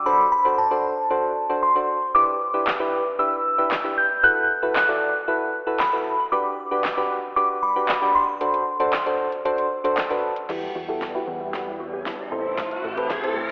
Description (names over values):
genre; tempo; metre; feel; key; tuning
dance-pop; 115 BPM; 4/4; straight; E minor; A4 = 441 Hz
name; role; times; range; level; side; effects
glassy synth bell; melody; 0.0-9.9 s; A5 to G6; -20 LUFS; equal; chorus, phaser, analog delay
soft electric-piano-like synth keys; accompaniment; 0.1-13.5 s; C4 to D5; -24 LUFS; equal; chorus, sidechain pumping, low-pass filter
deep house drum kit; drums; 2.7-13.4 s; crash cymbal, handclaps, hi-hat, kick drum, snare drum; -28 LUFS; equal; overdrive
string machine, violas; sustained chords; 10.5-13.5 s; E3 to F#5; -35 LUFS; equal; phaser, ensemble chorus, sidechain pumping, low-pass filter
mallet-like synth pluck; arpeggios; 10.5-13.4 s; G3 to A4; -36 LUFS; equal; none
solid FM bass; bass; 10.5-13.5 s; A1 to E2; -40 LUFS; equal; sidechain pumping
riser; sound effects; 11.4-13.5 s; none; -31 LUFS; equal; none
room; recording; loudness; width
wet lush hall reverb, RT60 2.3 s; dreamy mix soaked in reverb, telephone sound; -20 LUFS; side -31 dB against mid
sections
0.0-10.5 A section; 10.5-13.5 B section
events
build-up 10.5-13.5; drum fill 10.5-13.5; filter sweep 10.5-13.5; riser 11.4-13.5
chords
0.1 D7; 2.1 Em7; 4.2 B7sus4; 6.3 Gmaj7; 8.4 D7; 10.5 Emadd9; 12.3 Am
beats
| 0.06 0.58 1.10 1.63 | 2.15 2.67 3.19 3.71 | 4.24 4.76 5.28 5.80 | 6.32 6.84 7.37 7.89 | 8.41 8.93 9.45 9.97 | 10.50 11.02 11.54 12.06 | 12.58 13.11